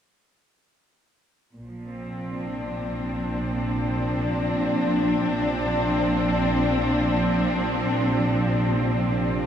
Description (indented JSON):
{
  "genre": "ambient",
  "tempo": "free time",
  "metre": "none",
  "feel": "none",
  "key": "unclear",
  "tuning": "A4 = 444 Hz",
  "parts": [
    { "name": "warm studio string section", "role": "sustained chords", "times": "1.5-9.5 s", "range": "Bb2 to D4", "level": "-22 LUFS", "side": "equal", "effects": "shimmer reverb" },
    { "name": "overtone-sweeping drone", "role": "drone", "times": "4.1-9.5 s", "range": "C3", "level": "-39 LUFS", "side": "right 4 dB", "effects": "none" },
    { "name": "muted symphonic double bass section", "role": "bass", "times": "1.6-9.5 s", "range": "Bb1", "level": "-30 LUFS", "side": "equal", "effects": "none" }
  ],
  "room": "wet cathedral reverb, RT60 7.3 s",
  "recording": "none",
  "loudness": "-21 LUFS",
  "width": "side -9 dB against mid",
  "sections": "1.6-9.5 A section",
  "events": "none",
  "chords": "1.6 Bb"
}